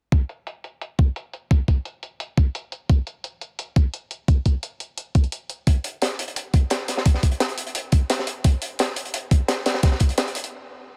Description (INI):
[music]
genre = drum and bass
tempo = 173 BPM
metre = 4/4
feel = straight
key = none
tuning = none
[part]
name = electronic hi-hat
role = drums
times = 0.1-10.5 s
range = none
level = -35 LUFS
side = equal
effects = low-pass filter on hats
[part]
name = electronic kick drum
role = drums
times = 0.1-10.1 s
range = none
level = -19 LUFS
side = equal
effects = none
[part]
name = crunchy breakbeat drum kit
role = drums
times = 5.7-10.5 s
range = hi-hat, snare drum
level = -27 LUFS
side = equal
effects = high-pass filter on hats, high-pass filter on snare, high-pass filter on room
[sound]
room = little or no reverb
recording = none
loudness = -23 LUFS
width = mono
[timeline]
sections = 0.1-11.0 A section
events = stop 10.5-11.0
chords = none